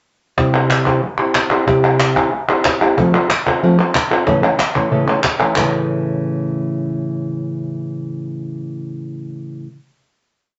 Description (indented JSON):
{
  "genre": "flamenco",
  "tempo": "185 BPM",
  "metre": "4/4",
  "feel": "straight",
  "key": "unclear",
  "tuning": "A4 = 441 Hz",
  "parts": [
    { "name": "nylon-string guitar", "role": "accompaniment", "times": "0.4-9.7 s", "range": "A2 to A4", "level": "-20 LUFS", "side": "equal", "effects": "none" },
    { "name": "cajon", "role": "percussion", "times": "0.4-5.6 s", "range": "none", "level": "-23 LUFS", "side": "equal", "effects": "none" },
    { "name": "palmas hand claps", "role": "percussion", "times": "0.5-5.6 s", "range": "none", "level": "-19 LUFS", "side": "equal", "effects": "none" }
  ],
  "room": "wet studio ambience, RT60 0.5 s",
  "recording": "nothing above 7.9 kHz",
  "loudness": "-17 LUFS",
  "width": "mono",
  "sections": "0.4-5.6 groove; 5.6-8.2 final chord",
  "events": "none",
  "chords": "0.4 C; 3.0 F; 4.3 A"
}